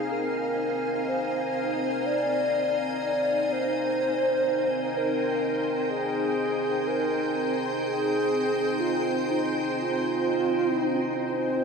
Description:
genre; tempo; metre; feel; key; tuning
ambient; 62 BPM; 4/4; straight; unclear; A4 = 439 Hz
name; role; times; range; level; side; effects
mellow hollow alto flute; melody; 0.0-11.6 s; Eb4 to D5; -27 LUFS; right 1 dB; ping-pong delay
soft additive organ-like pad; sustained chords; 0.0-11.6 s; C4 to Ab5; -27 LUFS; equal; ensemble chorus, built-in reverb
room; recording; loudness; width
wet cathedral reverb, RT60 6.8 s; none; -24 LUFS; side -5 dB against mid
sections
0.0-11.6 A section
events
none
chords
0.0 Bb7sus4/C; 4.0 Fm7/C

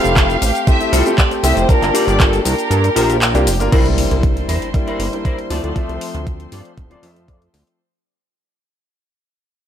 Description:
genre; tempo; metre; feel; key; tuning
nu-disco, nu disco; 118 BPM; 4/4; straight; C mixolydian; A4 = 439 Hz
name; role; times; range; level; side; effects
clear studio violin section; melody; 0.0-3.4 s; A4 to F5; -21 LUFS; right 2 dB; ping-pong delay
bright concert grand piano; accompaniment; 0.0-7.8 s; F3 to A5; -21 LUFS; left 1 dB; sidechain pumping, ping-pong delay
rich chamber string section; sustained chords; 0.0-7.8 s; G4 to C6; -27 LUFS; left 1 dB; sidechain pumping
clean electric guitar; riff; 0.0-7.7 s; E4 to D5; -22 LUFS; left 2 dB; ensemble chorus, low-pass filter
chorused synth bass; bass; 0.0-7.6 s; D1 to G2; -18 LUFS; equal; sidechain pumping
pop drum kit; drums; 0.0-7.8 s; crash cymbal, handclaps, hi-hat, shaker; -21 LUFS; left 1 dB; none
electronic kick drum; drums; 0.2-7.4 s; none; -15 LUFS; equal; none
impact; sound effects; 3.7-5.8 s; none; -24 LUFS; right 1 dB; none
room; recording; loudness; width
little or no reverb; none; -13 LUFS; side -9 dB against mid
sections
0.0-3.7 A section; 3.7-7.8 B section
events
drop 0.0-3.7; kick drops out 2.7-3.7; fade-out 3.7-7.8; impact 3.7-5.8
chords
0.0 Fmaj7; 1.7 Gm7; 3.7 C7; 5.5 Dm7

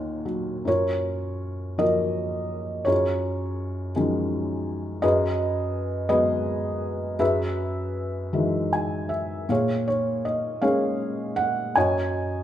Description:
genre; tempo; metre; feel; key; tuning
classical, lyrical solo piano; 51-57 BPM (dotted quarters); 6/8; rubato; F# major; A4 = 438 Hz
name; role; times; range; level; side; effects
felt-muted upright piano; solo; 0.0-12.4 s; D#2 to G#5; -23 LUFS; equal; none
room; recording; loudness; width
moderate recital hall reverb, RT60 1.4 s; minimal, uncompressed stereo recording; -23 LUFS; side -11 dB against mid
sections
0.7-12.4 A section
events
felt piano fill 8.3-9.5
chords
0.0 D#m7; 0.7 F#maj7; 2.9 D#m11/F#; 5.0 G#m7/F#; 7.2 Emaj9/F#; 9.5 A#m7; 11.8 D#m11/F#

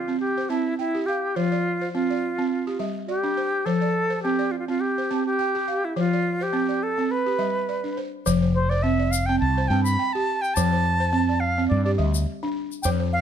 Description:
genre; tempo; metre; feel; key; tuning
west african traditional, West African string and xylophone music; 104 BPM; 4/4; swing 55% on 16ths; F lydian; A4 = 440 Hz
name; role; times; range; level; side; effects
bright reedy silver concert flute; melody; 0.0-13.2 s; E4 to B5; -25 LUFS; equal; none
balafon; arpeggios; 0.0-13.2 s; F3 to A5; -25 LUFS; right 1 dB; none
mellow fretless electric bass; bass; 8.3-13.2 s; F1 to G2; -23 LUFS; equal; none
egg shaker; percussion; 8.3-13.0 s; none; -32 LUFS; left 10 dB; none
room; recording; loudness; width
light reverb; close, detailed microphones; -21 LUFS; side -8 dB against mid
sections
0.0-8.3 A section; 8.3-13.2 B section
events
flute solo 8.3-13.2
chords
0.2 C5; 1.4 F5; 2.5 G5; 3.7 F; 4.8 C5; 6.0 F5; 7.1 G; 8.3 F5; 9.4 C5; 10.6 F; 11.7 G5

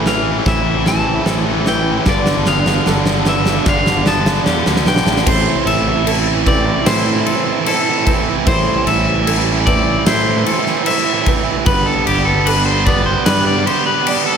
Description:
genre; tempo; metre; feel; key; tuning
post-rock; 75 BPM; 4/4; straight; A minor; A4 = 438 Hz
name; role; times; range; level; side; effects
pedal steel guitar; sustained chords; 0.0-14.4 s; C3 to A4; -29 LUFS; left 3 dB; none
felt-muted upright piano; arpeggios; 0.0-14.4 s; A4 to D5; -28 LUFS; right 5 dB; none
twangy electric guitar; arpeggios; 0.0-14.4 s; G2 to A4; -25 LUFS; left 2 dB; spring reverb, slapback echo
distorted electric guitar; riff; 0.0-14.4 s; G2 to B3; -19 LUFS; right 13 dB; overdrive
tight distorted guitar; riff; 0.0-5.3 s; G2 to E3; -22 LUFS; left 13 dB; distortion
fuzz fingered electric bass; bass; 0.0-13.6 s; G1 to A2; -20 LUFS; left 1 dB; overdrive
electric guitar at the edge of break-up; melody; 0.1-14.4 s; G4 to A5; -19 LUFS; left 2 dB; slapback echo
huge arena drum kit; drums; 0.1-14.3 s; crash cymbal, kick drum, snare drum; -18 LUFS; left 1 dB; none
room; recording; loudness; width
light reverb, small room ambience; none; -12 LUFS; side -7 dB against mid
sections
0.0-5.3 A section; 5.3-14.4 B section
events
build-up 0.0-5.3; drum fill 0.0-5.3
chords
0.0 Am; 2.1 G; 5.3 Am; 11.7 G

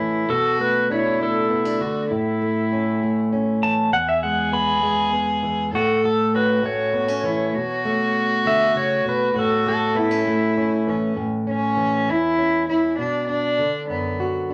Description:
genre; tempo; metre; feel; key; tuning
acoustic folk duo or small band; 66 BPM (dotted quarters); 6/8; straight; A major; A4 = 441 Hz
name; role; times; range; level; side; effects
warm cello; second line; 0.0-14.5 s; B3 to A4; -25 LUFS; equal; none
fingerpicked plugged-in steel-string acoustic guitar; accompaniment; 0.0-14.5 s; E2 to F#4; -26 LUFS; equal; none
pedal steel guitar; melody; 0.3-10.3 s; F#4 to B5; -24 LUFS; equal; none
room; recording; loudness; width
wet studio ambience, RT60 0.5 s; none; -21 LUFS; mono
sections
0.0-11.2 A section; 11.2-14.5 B section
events
pedal steel guitar solo 0.0-11.2; cello solo 11.2-14.5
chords
0.3 Bm7; 2.1 A; 3.9 E; 5.7 A; 7.5 Bm7; 9.4 A; 13.0 Bm

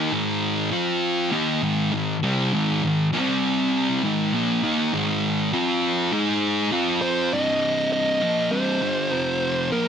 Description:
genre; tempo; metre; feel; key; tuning
metal; 100 BPM; 4/4; straight; C minor; A4 = 440 Hz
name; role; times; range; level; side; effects
thick fuzz guitar; riff; 0.0-9.9 s; C2 to Ab4; -21 LUFS; equal; distortion
fuzz lead guitar; melody; 7.0-9.9 s; Bb4 to Eb5; -23 LUFS; right 1 dB; distortion, digital delay
room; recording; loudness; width
light reverb; none; -20 LUFS; side -8 dB against mid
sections
0.0-7.3 A section; 7.3-9.9 B section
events
none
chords
0.0 Ab5; 0.7 F5; 1.3 Ab5; 3.1 C5; 4.0 Ab5; 5.5 F5; 6.1 Ab5; 6.7 F5; 7.3 Cm; 9.1 F5

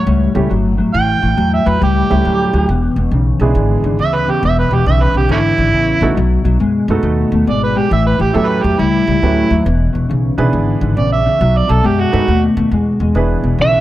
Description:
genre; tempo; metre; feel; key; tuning
blues; 138 BPM; 4/4; swing 65% on 8ths; unclear; A4 = 439 Hz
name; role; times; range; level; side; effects
mellow electric guitar; riff; 0.0-13.8 s; E2 to A3; -16 LUFS; left 3 dB; analog chorus
upright bass; bass; 0.1-13.8 s; E1 to F#2; -16 LUFS; equal; none
warm baby grand piano; accompaniment; 0.3-13.8 s; G3 to B4; -20 LUFS; right 4 dB; none
overdriven harmonica; second line; 0.9-12.4 s; A3 to G5; -17 LUFS; right 4 dB; none
biting lead guitar; melody; 13.6-13.8 s; E5; -11 LUFS; right 2 dB; overdrive
room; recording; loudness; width
moderate spring reverb, RT60 2.5 s; none; -12 LUFS; side -14 dB against mid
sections
0.0-13.1 A section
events
harmonica solo 0.0-13.1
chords
0.0 A7; 2.7 E7; 6.2 B7; 7.9 A7; 9.7 E7; 11.4 B7; 13.1 E7

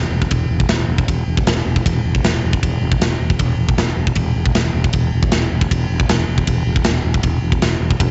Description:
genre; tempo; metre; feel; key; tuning
heavy metal; 156 BPM; 4/4; straight; unclear; A4 = 440 Hz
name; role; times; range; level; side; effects
fretless electric bass; bass; 0.0-8.1 s; E1; -21 LUFS; equal; none
tight metal drum kit; drums; 0.2-8.1 s; kick drum, ride cymbal, snare drum; -20 LUFS; equal; cassette tape
room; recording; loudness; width
little or no reverb; home recording on cassette, nothing above 7.9 kHz; -17 LUFS; mono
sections
0.0-8.1 A section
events
none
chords
none

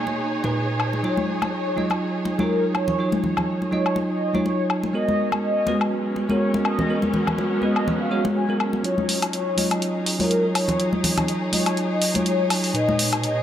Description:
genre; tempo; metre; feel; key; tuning
deep house; 123 BPM; 4/4; swing 55% on 16ths; Eb minor; A4 = 435 Hz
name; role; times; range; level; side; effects
bell-like tine electric piano; stabs; 0.0-13.4 s; A#2 to Eb5; -24 LUFS; right 1 dB; low-pass filter
warm studio string section; texture; 0.0-13.4 s; B2 to Db5; -29 LUFS; equal; none
congas; percussion; 0.1-13.0 s; none; -28 LUFS; left 3 dB; none
electronic woodblock and hi-hat; drums; 0.8-13.3 s; none; -26 LUFS; left 2 dB; overdrive
mellow horn-like synth lead; melody; 1.0-13.4 s; Bb4 to Ab5; -27 LUFS; left 1 dB; lush chorus, tape echo
room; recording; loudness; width
light reverb; none; -20 LUFS; side -10 dB against mid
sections
0.0-8.8 A section; 8.8-13.4 B section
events
build-up 8.8-13.4; filter sweep on tine electric piano 8.8-13.4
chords
0.0 Bmaj7; 1.0 Ebm9; 4.9 Abm9; 8.8 Ebm9; 12.7 Bmaj7

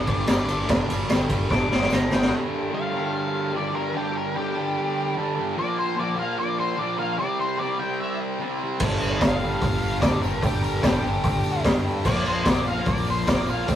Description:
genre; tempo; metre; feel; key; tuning
garage rock duo or trio; 148 BPM; 4/4; straight; unclear; A4 = 440 Hz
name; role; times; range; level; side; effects
octave-fuzz lead guitar; melody; 0.0-13.7 s; G4 to D6; -29 LUFS; left 3 dB; distortion, digital delay
thick fuzz guitar; riff; 0.0-13.8 s; G2 to C4; -26 LUFS; right 1 dB; distortion
fuzz fingered electric bass; bass; 0.0-2.3, 8.8-13.8 s; F1 to G2; -31 LUFS; equal; overdrive
raw garage drum kit; drums; 0.1-2.3, 8.8-13.8 s; crash cymbal, hi-hat, kick drum, ride cymbal, snare drum; -23 LUFS; equal; none
tambourine; percussion; 0.3-2.2, 8.8-13.8 s; none; -45 LUFS; left 2 dB; none
room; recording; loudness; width
moderate booth ambience, RT60 0.2 s; rough rehearsal-room recording, lossy compression artefacts; -21 LUFS; side -10 dB against mid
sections
0.0-2.3 A section; 2.3-13.8 B section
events
drum fill 1.5-2.3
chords
0.0 G5; 5.6 Bb5; 7.2 C5; 8.8 G5; 12.1 Bb5

